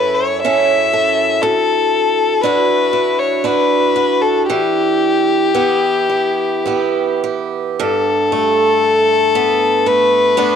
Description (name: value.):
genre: celtic folk, Celtic slow air.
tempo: 51-61 BPM.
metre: 3/4.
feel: rubato.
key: unclear.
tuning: A4 = 439 Hz.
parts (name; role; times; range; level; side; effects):
clear fiddle; melody; 0.0-10.6 s; G4 to E5; -14 LUFS; left 5 dB; cassette tape.
picked swing-style acoustic guitar; accompaniment; 0.0-10.6 s; D2 to A4; -18 LUFS; right 10 dB; cassette tape.
room: light reverb.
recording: home recording on cassette.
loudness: -12 LUFS.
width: side -7 dB against mid.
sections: 0.0-7.8 A section; 7.8-10.6 B section.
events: none.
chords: 0.0 F#m7; 1.4 Dadd9; 4.5 Em; 7.8 Gadd9.